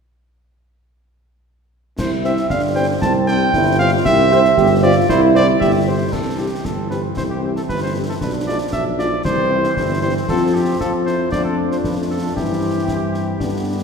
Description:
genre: military-style march for wind band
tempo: 116 BPM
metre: 2/4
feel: straight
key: C major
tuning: A4 = 441 Hz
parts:
  - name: mellow cornet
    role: melody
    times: 2.0-13.8 s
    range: G4 to A5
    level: -20 LUFS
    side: right 2 dB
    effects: none
  - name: warm euphonium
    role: second line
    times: 2.0-5.8 s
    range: C4 to G4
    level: -19 LUFS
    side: right 2 dB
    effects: none
  - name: clear trombone section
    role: sustained chords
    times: 2.0-13.8 s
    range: D3 to D4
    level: -28 LUFS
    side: right 2 dB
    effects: none
  - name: mellow tuba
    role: bass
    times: 2.0-13.8 s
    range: G1 to G2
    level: -20 LUFS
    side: right 1 dB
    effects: none
  - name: concert snare drum, clash cymbals and concert bass drum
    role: drums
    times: 2.0-13.8 s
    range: none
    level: -27 LUFS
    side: left 2 dB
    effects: none
  - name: mellow French horn section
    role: accompaniment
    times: 2.2-13.8 s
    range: E3 to C5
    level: -24 LUFS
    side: left 5 dB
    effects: none
room: wet concert hall reverb, RT60 2.0 s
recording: recorded in a church or concert hall, faint mains hum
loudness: -15 LUFS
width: side -6 dB against mid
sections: 2.0-6.1 A section; 6.1-13.8 B section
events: none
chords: 2.0 C; 8.2 Bdim7; 9.2 C; 10.3 F5; 11.3 Dm/F; 12.4 C/G

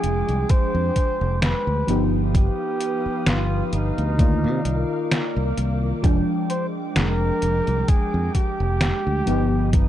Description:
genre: vaporwave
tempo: 65 BPM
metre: 4/4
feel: swing 55% on 16ths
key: F dorian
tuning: A4 = 436 Hz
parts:
  - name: mellow flugelhorn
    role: melody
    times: 0.0-9.9 s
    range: Eb4 to C5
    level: -27 LUFS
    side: right 1 dB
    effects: tape echo
  - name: mellow FM electric piano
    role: accompaniment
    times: 0.0-9.9 s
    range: Eb3 to G5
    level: -26 LUFS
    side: left 1 dB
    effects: lush chorus
  - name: soft string machine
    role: sustained chords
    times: 0.0-9.9 s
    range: Ab3 to Eb6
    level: -33 LUFS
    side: equal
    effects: ensemble chorus
  - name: fingered electric bass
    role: bass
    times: 0.0-9.9 s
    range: F1 to C3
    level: -23 LUFS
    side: equal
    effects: none
  - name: detuned 8-bit digital drum machine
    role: drums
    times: 0.0-9.9 s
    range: hi-hat, snare drum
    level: -24 LUFS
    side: equal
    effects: overdrive
  - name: electronic kick drum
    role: drums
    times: 0.5-9.9 s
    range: none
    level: -18 LUFS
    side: equal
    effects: overdrive
room: little or no reverb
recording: dark, warm production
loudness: -19 LUFS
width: side -12 dB against mid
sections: 0.0-9.9 A section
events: none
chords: 0.0 Fm69; 1.9 G7b13; 4.2 Cm11; 6.0 Fm69; 9.3 G7b13

